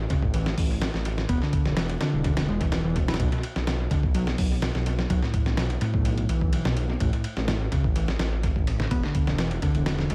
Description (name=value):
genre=breakbeat, breaks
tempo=126 BPM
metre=4/4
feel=straight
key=B minor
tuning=A4 = 435 Hz
part: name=dark detuned saw bass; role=bass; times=0.0-10.1 s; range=E1 to B1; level=-30 LUFS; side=equal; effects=none
part: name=overdriven picked electric bass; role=riff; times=0.1-10.1 s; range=A2 to E4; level=-30 LUFS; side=equal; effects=tube saturation, dub echo
part: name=dusty soul sampler-style drum kit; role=drums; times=0.1-10.1 s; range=hi-hat, kick drum, ride cymbal, snare drum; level=-29 LUFS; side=equal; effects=dub echo
room=light reverb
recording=echo-heavy mix, vinyl crackle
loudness=-25 LUFS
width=mono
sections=0.0-10.1 A section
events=none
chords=0.0 N.C.; 1.3 E7(no3); 3.2 B7(no3); 7.0 N.C.; 8.9 E7(no3)